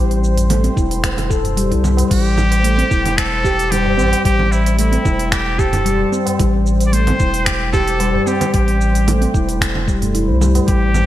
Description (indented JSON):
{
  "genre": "organic downtempo",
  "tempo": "112 BPM",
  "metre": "4/4",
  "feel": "straight",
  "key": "A minor pentatonic",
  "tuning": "A4 = 439 Hz",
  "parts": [
    { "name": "warm analog pad", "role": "sustained chords", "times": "0.0-11.1 s", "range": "C5", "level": "-29 LUFS", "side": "equal", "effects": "chorus, sidechain pumping" },
    { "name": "handpan", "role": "arpeggios", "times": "0.0-10.8 s", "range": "G3 to A4", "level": "-19 LUFS", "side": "left 1 dB", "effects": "low-pass filter, digital delay" },
    { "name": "round analog bass", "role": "bass", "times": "0.0-11.1 s", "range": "E1 to C2", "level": "-18 LUFS", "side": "equal", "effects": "sidechain pumping" },
    { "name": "organic electronic drum kit", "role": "drums", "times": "0.1-11.1 s", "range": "congas, crash cymbal, finger snaps, hi-hat, shaker", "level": "-23 LUFS", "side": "right 2 dB", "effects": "gated reverb" },
    { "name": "tabla", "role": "percussion", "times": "0.4-10.7 s", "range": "none", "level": "-28 LUFS", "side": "right 2 dB", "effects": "none" },
    { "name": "electronic kick drum", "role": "drums", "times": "0.8-10.8 s", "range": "none", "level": "-19 LUFS", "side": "equal", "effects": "none" },
    { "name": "trumpet with straight mute", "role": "melody", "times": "2.1-11.1 s", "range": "E4 to D5", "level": "-20 LUFS", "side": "equal", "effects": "digital delay" }
  ],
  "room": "moderate lush hall reverb, RT60 1.7 s",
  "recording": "bright 1980s-style digital production",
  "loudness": "-13 LUFS",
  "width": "side -13 dB against mid",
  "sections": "0.0-11.1 A section",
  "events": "none",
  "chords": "0.0 Am7"
}